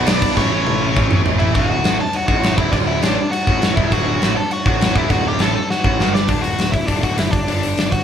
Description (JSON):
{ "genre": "punk rock", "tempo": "203 BPM", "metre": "4/4", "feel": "straight", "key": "D major", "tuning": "A4 = 441 Hz", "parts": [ { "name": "nasal lead guitar with a parked wah", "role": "melody", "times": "0.0-8.0 s", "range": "C#4 to D6", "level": "-21 LUFS", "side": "left 2 dB", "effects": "overdrive" }, { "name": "tight distorted guitar", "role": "riff", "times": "0.0-7.9 s", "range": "D2 to B4", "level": "-25 LUFS", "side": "left 8 dB", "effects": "distortion" }, { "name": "tight distorted guitar", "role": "riff", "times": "0.0-6.3 s", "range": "D2 to B3", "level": "-23 LUFS", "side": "right 7 dB", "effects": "distortion" }, { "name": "fuzz picked electric bass", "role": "bass", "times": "0.0-8.0 s", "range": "D1 to B1", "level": "-23 LUFS", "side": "equal", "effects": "overdrive" }, { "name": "big rock drum kit", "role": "drums", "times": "0.1-8.0 s", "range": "crash cymbal, hi-hat, kick drum, snare drum, toms", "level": "-18 LUFS", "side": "equal", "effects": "none" } ], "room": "light reverb", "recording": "band playing live in one room", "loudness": "-15 LUFS", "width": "side -8 dB against mid", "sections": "0.0-1.5 A section; 1.5-6.3 B section; 6.3-8.0 C section", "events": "drum fill 0.4-1.5, 5.7-6.3", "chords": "0.4 A; 1.5 D; 7.3 G5" }